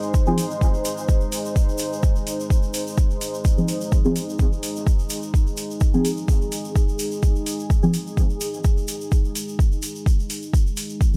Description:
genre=dub techno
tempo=127 BPM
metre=4/4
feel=swing 54% on 16ths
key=F minor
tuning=A4 = 437 Hz
part: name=deep dark ambient pad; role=sustained chords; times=0.0-11.2 s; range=Ab3 to C5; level=-31 LUFS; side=equal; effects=chorus, built-in reverb, sidechain pumping
part: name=egg shaker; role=percussion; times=0.0-11.2 s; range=none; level=-37 LUFS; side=equal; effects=none
part: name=electronic kick drum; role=drums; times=0.1-11.1 s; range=none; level=-21 LUFS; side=equal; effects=none
part: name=deep mellow chord stab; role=stabs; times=0.3-0.4, 3.6-8.0, 11.1-11.2 s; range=F3 to Ab4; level=-26 LUFS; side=equal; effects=chorus, phaser, dub echo
part: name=electronic hi-hat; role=drums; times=0.4-10.9 s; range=none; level=-34 LUFS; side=equal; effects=none
room=digital ambience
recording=none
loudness=-22 LUFS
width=mono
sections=0.0-11.2 A section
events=filter sweep on synth stab 0.0-11.2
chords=0.0 Fm

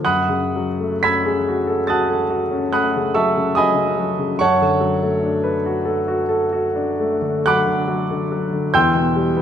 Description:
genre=classical, impressionist solo piano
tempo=58-74 BPM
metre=5/4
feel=rubato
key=unclear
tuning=A4 = 440 Hz
part: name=clear grand piano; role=solo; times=0.0-9.4 s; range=E2 to B6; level=-16 LUFS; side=equal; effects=none
room=wet recital hall reverb, RT60 1.4 s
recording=none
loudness=-16 LUFS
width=side -9 dB against mid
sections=0.0-9.4 A section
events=none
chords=0.0 F#madd9; 4.4 Bm9/F#; 8.7 Em

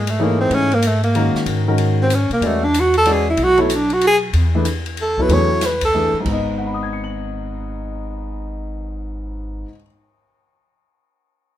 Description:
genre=modal jazz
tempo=188 BPM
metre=3/4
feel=swing 63% on 8ths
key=G# phrygian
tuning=A4 = 438 Hz
part: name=warm tenor saxophone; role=melody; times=0.0-6.2 s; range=G#3 to C#5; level=-16 LUFS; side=right 1 dB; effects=none
part: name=upright bass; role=bass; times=0.0-9.6 s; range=G#1 to B2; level=-22 LUFS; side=equal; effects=none
part: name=open jazz drum kit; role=drums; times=0.1-8.1 s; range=crash cymbal, cymbal swell, hi-hat, kick drum, ride cymbal, snare drum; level=-28 LUFS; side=left 2 dB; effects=none
part: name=warm grand piano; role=accompaniment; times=0.2-9.9 s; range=G#2 to F#7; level=-22 LUFS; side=left 2 dB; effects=none
room=moderate studio reverb, RT60 0.7 s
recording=minimal, uncompressed stereo recording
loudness=-15 LUFS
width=side -12 dB against mid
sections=0.0-6.2 A section; 6.2-8.2 B section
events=tenor saxophone solo 0.0-6.2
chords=0.0 G#9sus4; 2.4 E9sus4; 6.2 G#m

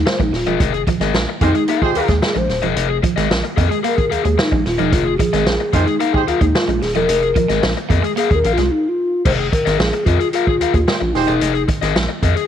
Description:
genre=funk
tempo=111 BPM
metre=4/4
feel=straight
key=F minor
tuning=A4 = 440 Hz
part: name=mellow hollow round clay ocarina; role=melody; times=0.0-11.7 s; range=Eb4 to C5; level=-19 LUFS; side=left 1 dB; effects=none
part: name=electric guitar at the edge of break-up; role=riff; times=0.0-8.7 s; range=F3 to Bb3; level=-26 LUFS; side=right 13 dB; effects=none
part: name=rubbery square bass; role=bass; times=0.0-12.3 s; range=Eb1 to F2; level=-20 LUFS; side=right 1 dB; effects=none
part: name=crunchy overdriven guitar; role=accompaniment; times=0.1-12.4 s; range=Ab4 to F5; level=-21 LUFS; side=left 14 dB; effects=none
part: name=vintage drum kit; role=drums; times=0.1-12.5 s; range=crash cymbal, hi-hat, kick drum, snare drum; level=-20 LUFS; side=right 1 dB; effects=none
part: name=warm horn section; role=second line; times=1.4-2.2, 5.7-6.2, 10.9-11.3 s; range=Ab3 to C5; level=-25 LUFS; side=right 15 dB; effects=none
room=light reverb, studio ambience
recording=1960s-style stereo with parts hard left and right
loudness=-14 LUFS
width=side -9 dB against mid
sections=0.0-9.3 A section; 9.3-12.5 B section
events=ocarina solo 0.0-9.3; break 8.7-9.3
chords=0.0 Fm11

